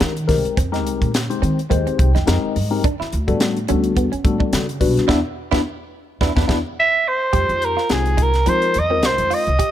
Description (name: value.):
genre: electric jazz fusion.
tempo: 106 BPM.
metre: 4/4.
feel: swing 56% on 16ths.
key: unclear.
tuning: A4 = 440 Hz.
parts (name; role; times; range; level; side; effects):
tine electric piano; accompaniment; 0.0-9.5 s; G3 to G5; -22 LUFS; left 5 dB; phaser.
direct-recorded clean electric guitar; stabs; 0.0-9.7 s; Bb3 to G4; -26 LUFS; right 6 dB; wide subtle chorus.
upright bass; bass; 0.0-9.6 s; B1 to F3; -21 LUFS; equal; none.
crisp fusion drum kit; drums; 0.0-9.7 s; hi-hat, kick drum, snare drum; -22 LUFS; equal; none.
growling soprano saxophone; melody; 6.8-9.7 s; Ab4 to E5; -17 LUFS; right 2 dB; slapback echo.
room: little or no reverb.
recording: none.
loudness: -16 LUFS.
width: side -11 dB against mid.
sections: 0.0-7.3 A section; 7.3-9.7 B section.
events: tine electric piano fill 1.7-2.8; band accent 5.1-7.3; drum fill 6.8-7.3.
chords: 0.0 Fm11; 2.8 Em11; 7.3 Fm9.